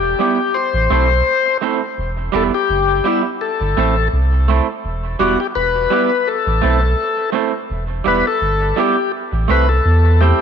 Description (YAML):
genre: roots reggae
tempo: 84 BPM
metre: 4/4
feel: straight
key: E minor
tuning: A4 = 441 Hz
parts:
  - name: overdriven tonewheel organ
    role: melody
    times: 0.0-10.4 s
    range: E4 to C5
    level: -18 LUFS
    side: left 7 dB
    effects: slow rotary speaker, dub echo
  - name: warm sub bass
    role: bass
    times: 0.0-10.3 s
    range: E1 to E2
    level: -16 LUFS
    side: equal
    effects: none
  - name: electric guitar through a small old amp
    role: accompaniment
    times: 0.2-10.4 s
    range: G3 to A4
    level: -20 LUFS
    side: right 9 dB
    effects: dub echo
room: moderate echo chamber reverb, RT60 1.7 s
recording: 1960s-style stereo with parts hard left and right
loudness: -14 LUFS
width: side -7 dB against mid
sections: 0.0-10.4 A section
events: none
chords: 0.0 Em; 0.5 Am; 2.0 Em; 3.4 Am; 4.8 Em; 6.3 Am; 7.7 Em; 9.1 Am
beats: 0.54 1.26 | 1.97 2.69 3.40 4.12 | 4.83 5.55 6.26 6.98 | 7.69 8.41 9.13 9.84